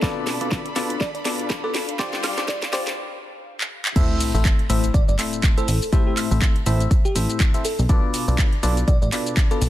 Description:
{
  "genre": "piano house",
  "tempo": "122 BPM",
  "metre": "4/4",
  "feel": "swing 57% on 16ths",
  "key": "A minor",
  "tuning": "A4 = 439 Hz",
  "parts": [
    { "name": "bell-like FM electric piano", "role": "melody", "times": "0.0-9.7 s", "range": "G4 to D5", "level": "-30 LUFS", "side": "equal", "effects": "chorus, digital delay" },
    { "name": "rich studio violin section", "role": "sustained chords", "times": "0.0-3.0 s", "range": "G4 to C6", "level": "-34 LUFS", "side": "right 1 dB", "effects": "sidechain pumping, low-pass filter" },
    { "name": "barking FM electric piano", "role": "riff", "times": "0.0-9.6 s", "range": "A2 to E5", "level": "-26 LUFS", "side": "left 2 dB", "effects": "chorus, sidechain pumping, low-pass filter, digital delay" },
    { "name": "electronic kick drum", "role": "drums", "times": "0.0-9.5 s", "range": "none", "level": "-19 LUFS", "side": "equal", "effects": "none" },
    { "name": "house drum kit", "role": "drums", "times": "0.0-9.7 s", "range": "crash cymbal, handclaps, hi-hat, shaker, snare drum, woodblock", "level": "-27 LUFS", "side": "equal", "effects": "none" },
    { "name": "ethereal airy pad", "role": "texture", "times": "0.0-3.0 s", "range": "D4 to B5", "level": "-36 LUFS", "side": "left 2 dB", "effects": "ensemble chorus, built-in reverb, sidechain pumping" },
    { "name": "plucky analog bass", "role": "bass", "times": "4.0-9.7 s", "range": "G1 to B1", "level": "-20 LUFS", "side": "equal", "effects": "sidechain pumping" },
    { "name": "sub drop", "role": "sound effects", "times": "4.0-5.9 s", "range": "none", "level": "-30 LUFS", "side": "equal", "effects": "none" }
  ],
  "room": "digital ambience",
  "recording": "dense, heavily limited modern master, high-pass filter",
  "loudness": "-18 LUFS",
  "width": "side -14 dB against mid",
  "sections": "0.0-4.0 A section; 4.0-9.7 B section",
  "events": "build-up 0.0-4.0; drum fill 0.0-3.0, 3.6-4.0; filter sweep on FM electric piano 0.0-4.0; filter sweep 0.0-4.0; break 3.0-4.0; drop 4.0-9.7; impact 4.0-5.9",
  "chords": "0.0 Bm7b5; 2.0 G7sus4; 4.0 Am; 7.6 Bm7b5"
}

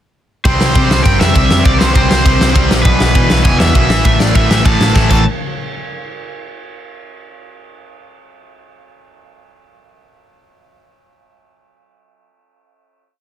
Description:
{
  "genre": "punk rock",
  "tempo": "200 BPM",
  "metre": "4/4",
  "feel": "straight",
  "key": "unclear",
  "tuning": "A4 = 440 Hz",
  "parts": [
    { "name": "cranked stack guitar", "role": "melody", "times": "0.5-5.2 s", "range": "B4 to A5", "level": "-18 LUFS", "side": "equal", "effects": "overdrive" },
    { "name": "distorted electric guitar", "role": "riff", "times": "0.5-5.2 s", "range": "E2 to C4", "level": "-15 LUFS", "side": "equal", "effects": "overdrive" },
    { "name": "overdriven picked electric bass", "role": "bass", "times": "0.5-5.2 s", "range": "F1 to C3", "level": "-16 LUFS", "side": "equal", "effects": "none" },
    { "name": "big rock drum kit", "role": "drums", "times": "0.5-5.2 s", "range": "crash cymbal, kick drum, ride cymbal, snare drum", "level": "-14 LUFS", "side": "equal", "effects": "none" }
  ],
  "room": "little or no reverb",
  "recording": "dense, heavily limited modern master",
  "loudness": "-9 LUFS",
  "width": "side -11 dB against mid",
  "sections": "0.5-5.3 chorus; 5.3-6.4 final hit",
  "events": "drum fill 5.0",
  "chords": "0.5 C5; 2.9 E5/B; 3.9 A5; 5.3 N.C."
}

